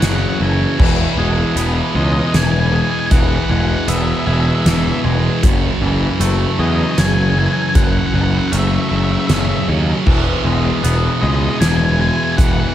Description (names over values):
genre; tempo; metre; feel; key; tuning
post-rock; 78 BPM; 3/4; straight; E major; A4 = 440 Hz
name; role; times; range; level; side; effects
octave-fuzz lead guitar; melody; 0.0-12.7 s; D#5 to G#5; -23 LUFS; left 1 dB; distortion, slapback echo
twangy electric guitar; arpeggios; 0.0-12.7 s; F#2 to B3; -22 LUFS; left 4 dB; slapback echo
thick fuzz guitar; riff; 0.0-12.7 s; E2 to F#3; -19 LUFS; right 2 dB; distortion
fuzz picked electric bass; bass; 0.0-12.6 s; E1 to E2; -18 LUFS; equal; overdrive
soft-mallet drum kit; drums; 0.0-12.6 s; crash cymbal, hi-hat, kick drum, snare drum; -18 LUFS; equal; none
room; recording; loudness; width
light reverb, small room ambience; none; -13 LUFS; side -11 dB against mid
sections
0.0-12.7 A section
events
none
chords
0.0 F#m7; 0.8 E; 5.4 F#m7; 10.1 E